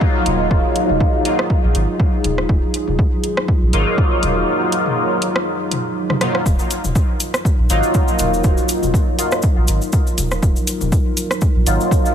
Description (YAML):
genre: dub techno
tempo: 121 BPM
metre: 4/4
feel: swing 55% on 16ths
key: Eb minor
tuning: A4 = 440 Hz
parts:
  - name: dark analog pad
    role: sustained chords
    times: 0.0-12.1 s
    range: Gb3 to Bb4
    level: -24 LUFS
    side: equal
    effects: chorus, sidechain pumping
  - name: resonant sweep polysynth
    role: stabs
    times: 0.0-12.1 s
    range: Gb3 to F4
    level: -20 LUFS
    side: equal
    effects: chorus, phaser, sidechain pumping, dub echo
  - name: electronic kick drum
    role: drums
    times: 0.0-12.0 s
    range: none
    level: -16 LUFS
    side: equal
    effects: overdrive
  - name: soft dub sub bass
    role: bass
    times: 0.3-11.8 s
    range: Eb1 to Bb1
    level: -20 LUFS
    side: equal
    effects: sidechain pumping
  - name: deep house drum kit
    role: drums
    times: 0.3-11.8 s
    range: hi-hat, rim click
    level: -23 LUFS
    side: equal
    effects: overdrive
  - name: electronic toms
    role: percussion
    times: 0.3-10.9 s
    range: none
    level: -26 LUFS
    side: left 4 dB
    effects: overdrive, sidechain pumping on toms, dub echo
  - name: cabasa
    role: percussion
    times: 6.5-12.1 s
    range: none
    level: -27 LUFS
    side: left 3 dB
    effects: none
room: light reverb, digital ambience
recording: none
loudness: -15 LUFS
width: side -9 dB against mid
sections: 0.0-12.1 A section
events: kick drops out 4.5-6.5; drum fill 6.1-6.5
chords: 0.0 Ebmadd9